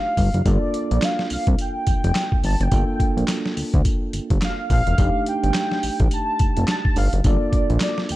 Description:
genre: R&B, new jack swing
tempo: 106 BPM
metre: 4/4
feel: swing 60% on 16ths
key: G minor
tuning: A4 = 440 Hz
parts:
  - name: warm velvety synth lead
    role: melody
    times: 0.0-8.2 s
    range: D5 to A5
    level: -26 LUFS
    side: equal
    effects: chorus
  - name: barky tine electric piano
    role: accompaniment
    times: 0.0-8.2 s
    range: A3 to A4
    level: -28 LUFS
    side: right 2 dB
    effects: auto-pan
  - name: fat analog bass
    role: bass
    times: 0.2-8.2 s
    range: E1 to D2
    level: -20 LUFS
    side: equal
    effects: none
  - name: boom bap sampler-style drum kit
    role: drums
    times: 0.2-8.2 s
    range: handclaps, hi-hat, kick drum, snare drum, tambourine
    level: -21 LUFS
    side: equal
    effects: vintage 12-bit sampler grit
room: digital ambience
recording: dark, warm production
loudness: -18 LUFS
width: side -16 dB against mid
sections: 0.0-8.2 A section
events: none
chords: 0.5 Gm9; 5.0 F13; 7.2 Gm9

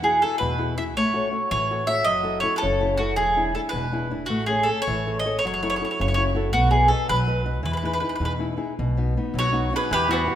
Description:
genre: italian folk, Italian serenade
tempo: 108 BPM (dotted quarters)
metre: 6/8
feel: rubato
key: E major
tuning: A4 = 440 Hz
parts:
  - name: mandolin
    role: melody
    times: 0.0-10.4 s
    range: F#4 to E5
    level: -23 LUFS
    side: right 1 dB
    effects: none
  - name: nylon-string guitar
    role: accompaniment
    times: 0.0-10.4 s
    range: B2 to D#5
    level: -27 LUFS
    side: left 2 dB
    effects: none
  - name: upright bass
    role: bass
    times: 0.0-10.3 s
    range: E1 to E2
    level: -27 LUFS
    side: right 1 dB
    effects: none
  - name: bowl-back mandolin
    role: second line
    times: 9.4-10.4 s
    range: B3 to G#4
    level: -26 LUFS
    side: right 4 dB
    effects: none
room: moderate recital hall reverb, RT60 1.8 s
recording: minimal, uncompressed stereo recording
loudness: -20 LUFS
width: side -10 dB against mid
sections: 0.0-8.8 A section; 8.8-10.4 B section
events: none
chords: 0.0 Eadd9; 1.0 A6; 2.1 F#m7; 3.2 E7; 4.3 Amaj7; 5.4 F#m7; 6.5 B; 7.6 Emaj7; 8.8 B

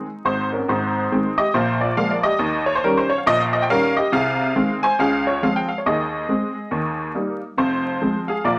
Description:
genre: jazz, stride piano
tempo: 139 BPM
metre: 4/4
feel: swing 62% on 8ths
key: Ab major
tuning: A4 = 441 Hz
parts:
  - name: honky-tonk upright piano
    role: solo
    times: 0.0-8.6 s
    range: F1 to Ab5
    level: -21 LUFS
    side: equal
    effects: none
room: wet studio reverb, RT60 0.8 s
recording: vinyl crackle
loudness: -21 LUFS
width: mono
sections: 0.7-8.6 A section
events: none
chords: 0.0 Ab; 1.5 Bb5; 2.4 Eb7; 3.3 Eb7/Bb; 4.1 Ab/C; 5.0 Dbmaj7; 5.9 Ab/Eb; 6.7 Eb; 7.6 Fm

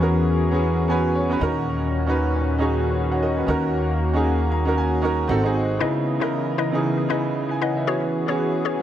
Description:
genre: amapiano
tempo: 116 BPM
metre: 4/4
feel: swing 58% on 16ths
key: C# dorian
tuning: A4 = 440 Hz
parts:
  - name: warm concert grand piano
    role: accompaniment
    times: 0.0-8.8 s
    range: C#3 to A#5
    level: -23 LUFS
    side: right 2 dB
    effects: none
  - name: warm analog pad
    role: sustained chords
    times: 0.0-8.8 s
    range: A#2 to D#5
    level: -26 LUFS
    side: left 3 dB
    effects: chorus
  - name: upright bass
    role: bass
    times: 0.0-5.8 s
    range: G#1 to E2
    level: -23 LUFS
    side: equal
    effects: none
  - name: mallet-like synth pluck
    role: stabs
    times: 5.8-8.8 s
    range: E4 to D#5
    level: -26 LUFS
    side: left 8 dB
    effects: chorus, tape echo
room: light reverb, small room ambience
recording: none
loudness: -19 LUFS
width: side -11 dB against mid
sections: 0.0-8.8 A section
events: grand piano fill 0.6-1.7, 4.3-5.8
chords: 0.0 E69; 1.4 Bmaj9/D#; 5.3 G#7b9; 5.8 C#m9; 7.9 E69

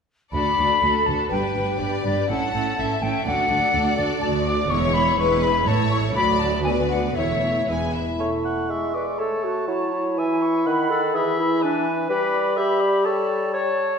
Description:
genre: quick classical-period movement for symphony orchestra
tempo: 124 BPM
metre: 2/4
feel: rubato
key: D major, A major from 4.2 s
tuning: A4 = 440 Hz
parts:
  - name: warm studio violin section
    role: melody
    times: 0.3-8.0 s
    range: A4 to D5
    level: -31 LUFS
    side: left 3 dB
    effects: none
  - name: rich studio violin section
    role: second line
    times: 0.3-8.2 s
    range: A4 to G#5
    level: -27 LUFS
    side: left 4 dB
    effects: none
  - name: silver concert flute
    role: second line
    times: 0.3-14.0 s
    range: D5 to D6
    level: -24 LUFS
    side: left 3 dB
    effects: none
  - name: warm studio viola section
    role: accompaniment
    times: 0.3-8.0 s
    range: F#3 to G4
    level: -28 LUFS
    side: right 3 dB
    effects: none
  - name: warm studio cello section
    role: bass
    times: 0.3-8.0 s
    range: D2 to A2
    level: -29 LUFS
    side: right 3 dB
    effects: none
  - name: warm studio double bass section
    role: bass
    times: 0.3-8.0 s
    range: E1 to D2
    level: -28 LUFS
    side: right 3 dB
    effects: none
  - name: mellow clarinet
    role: second line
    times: 7.9-14.0 s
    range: D4 to C#5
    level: -23 LUFS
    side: left 1 dB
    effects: none
  - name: warm cor anglais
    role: second line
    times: 8.2-14.0 s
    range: B4 to F#5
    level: -28 LUFS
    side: right 1 dB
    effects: none
  - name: warm bassoon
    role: accompaniment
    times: 8.2-14.0 s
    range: D#3 to A3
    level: -25 LUFS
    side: right 2 dB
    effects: none
room: wet scoring stage reverb, RT60 1.6 s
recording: minimal, uncompressed stereo recording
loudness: -19 LUFS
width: side -6 dB against mid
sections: 0.3-8.2 A section; 8.2-14.0 B section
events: none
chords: 0.3 D; 1.3 G; 2.3 A; 3.3 D; 4.7 E; 5.7 A; 6.2 D; 7.2 A/E; 7.7 E; 8.2 A; 8.7 E/G#; 9.2 A; 10.2 E; 10.7 B/D#; 11.1 E; 12.1 G

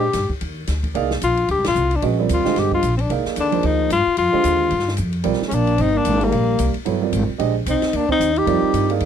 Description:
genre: modal jazz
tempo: 223 BPM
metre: 4/4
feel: swing 58% on 8ths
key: F dorian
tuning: A4 = 440 Hz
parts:
  - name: warm tenor saxophone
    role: melody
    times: 0.0-8.9 s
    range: Bb3 to G4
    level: -19 LUFS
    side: left 5 dB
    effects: none
  - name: upright bass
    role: bass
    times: 0.0-9.1 s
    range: G1 to Bb2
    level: -22 LUFS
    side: equal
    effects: none
  - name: open jazz drum kit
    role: drums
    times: 0.1-9.1 s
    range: hi-hat, kick drum, ride cymbal, snare drum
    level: -30 LUFS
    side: left 1 dB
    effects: none
  - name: warm grand piano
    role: accompaniment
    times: 0.9-9.1 s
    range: D3 to F5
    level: -22 LUFS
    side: right 14 dB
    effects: none
  - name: growling trombone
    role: second line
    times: 5.5-8.9 s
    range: G3 to Eb4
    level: -23 LUFS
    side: right 14 dB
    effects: none
room: little or no reverb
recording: dry, close 1970s-style studio recording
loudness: -17 LUFS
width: side -8 dB against mid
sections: 0.0-9.1 A section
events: band accent 1.6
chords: 0.0 F13sus4

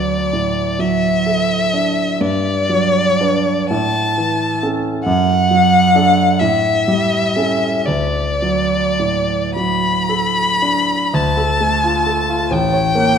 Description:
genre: classical, romantic duo for violin and grand piano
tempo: 34-46 BPM (dotted quarters)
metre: 6/8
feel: rubato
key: D major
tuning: A4 = 435 Hz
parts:
  - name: rich violin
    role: melody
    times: 0.0-13.2 s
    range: D5 to B5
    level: -16 LUFS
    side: left 2 dB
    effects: none
  - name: warm grand piano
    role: accompaniment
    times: 0.0-13.2 s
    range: A1 to C#5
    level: -17 LUFS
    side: right 2 dB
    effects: none
room: moderate scoring stage reverb, RT60 2.0 s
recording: none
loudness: -14 LUFS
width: side -7 dB against mid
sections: 0.0-11.1 A section; 11.1-13.2 B section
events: none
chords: 0.0 D; 2.2 Gmaj7; 3.7 A; 5.1 D/F#; 6.4 A7; 7.9 D; 11.1 Dm; 12.5 A7b9

